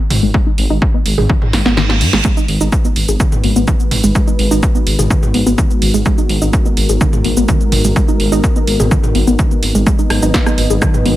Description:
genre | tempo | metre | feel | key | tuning
melodic techno | 126 BPM | 4/4 | straight | G# minor | A4 = 439 Hz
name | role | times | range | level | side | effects
dark detuned saw bass | bass | 0.1-11.1 s | G#1 to G#2 | -16 LUFS | equal | sidechain pumping
punchy analog drum machine | drums | 0.1-11.2 s | hi-hat, rim click, shaker, snare drum, toms | -19 LUFS | right 1 dB | overdrive
warbly dusty pluck | arpeggios | 0.2-11.2 s | D#3 to G#4 | -18 LUFS | equal | chorus, sidechain pumping, digital delay
electronic kick drum | drums | 0.3-10.9 s | none | -14 LUFS | equal | overdrive
reverse cymbal | sound effects | 1.5-2.2 s | none | -21 LUFS | right 5 dB | none
dark analog pad | sustained chords | 2.2-11.2 s | F#3 to D#5 | -21 LUFS | left 1 dB | chorus, sidechain pumping
room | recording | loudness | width
little or no reverb | none | -11 LUFS | side -14 dB against mid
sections
0.0-11.2 A section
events
reverse cymbal 1.5-2.2; drum fill 1.5-2.2; kick drops out 1.8-2.2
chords
0.0 N.C.; 2.2 G#m7; 9.9 B/G#

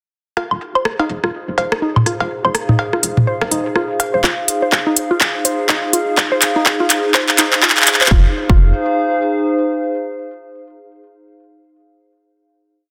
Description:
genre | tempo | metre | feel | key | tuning
minimal techno | 124 BPM | 4/4 | swing 59% on 16ths | F minor | A4 = 439 Hz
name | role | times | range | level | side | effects
mallet-like synth pluck | riff | 0.4-8.7 s | Eb4 to C5 | -24 LUFS | equal | chorus, sidechain pumping, tape echo
booming analog drum machine | percussion | 0.4-4.1 s | cowbell, rim click, toms, woodblock | -20 LUFS | equal | soft clipping on snare, small room ambience
warbly tape-like pad | texture | 1.0-10.0 s | Eb4 to F5 | -23 LUFS | equal | chorus, built-in reverb, sidechain pumping
rubbery square bass | bass | 0.5-4.2, 8.1-8.7 s | F1 to G1 | -22 LUFS | equal | sidechain pumping, high-pass filter
house drum kit | drums | 0.6-8.2 s | handclaps, hi-hat | -16 LUFS | equal | low-pass filter on hats, small room ambience, low-pass filter on snare
electronic kick drum | drums | 4.2-8.6 s | none | -16 LUFS | equal | high-pass filter on kick, small room ambience
room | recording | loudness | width
moderate lush hall reverb, RT60 2.2 s | dense, heavily limited modern master, high-pass filter | -16 LUFS | mono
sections
0.4-4.2 intro; 4.2-8.1 build; 8.1-10.0 final chord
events
build-up 4.2-8.1; drum fill 4.2-8.1; filter sweep on synth arpeggio sound 4.2-8.1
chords
0.4 Fm7

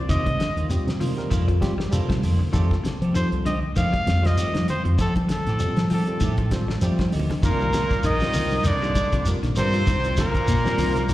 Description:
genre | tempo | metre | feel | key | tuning
afrobeat | 98 BPM | 4/4 | swing 56% on 16ths | C dorian | A4 = 440 Hz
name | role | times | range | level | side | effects
clean electric guitar | arpeggios | 0.0-11.1 s | Bb2 to G3 | -31 LUFS | left 5 dB | wide subtle chorus, slapback echo
fingered electric bass | bass | 0.0-11.1 s | Bb1 to F3 | -23 LUFS | equal | none
clear trumpet | melody | 0.1-11.1 s | A4 to F5 | -27 LUFS | equal | slapback echo
semi-hollow electric guitar | stabs | 0.1-11.1 s | Eb3 to G4 | -35 LUFS | right 6 dB | analog chorus, slapback echo
cloth-damped thuddy drum kit | drums | 0.1-11.1 s | hi-hat, kick drum, snare drum | -27 LUFS | equal | none
shekere | percussion | 0.1-11.1 s | none | -29 LUFS | equal | none
congas | percussion | 0.3-11.1 s | none | -32 LUFS | right 1 dB | none
barky tine electric piano | accompaniment | 0.7-11.0 s | G3 to G5 | -32 LUFS | right 1 dB | overdrive, slapback echo
brilliant trumpet | second line | 7.4-11.1 s | Bb3 to Eb4 | -35 LUFS | right 2 dB | slapback echo
raspy baritone saxophone | second line | 7.4-11.1 s | Bb2 to Eb3 | -30 LUFS | equal | slapback echo
room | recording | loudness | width
light reverb, small room ambience | live gig heard through the venue's PA, recital hall reverb | -20 LUFS | side -15 dB against mid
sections
0.0-7.4 A section; 7.4-11.1 B section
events
tine electric piano fill 6.5-7.4; drum fill 7.0-7.4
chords
0.0 Cm11; 2.5 F9; 7.4 Cm11

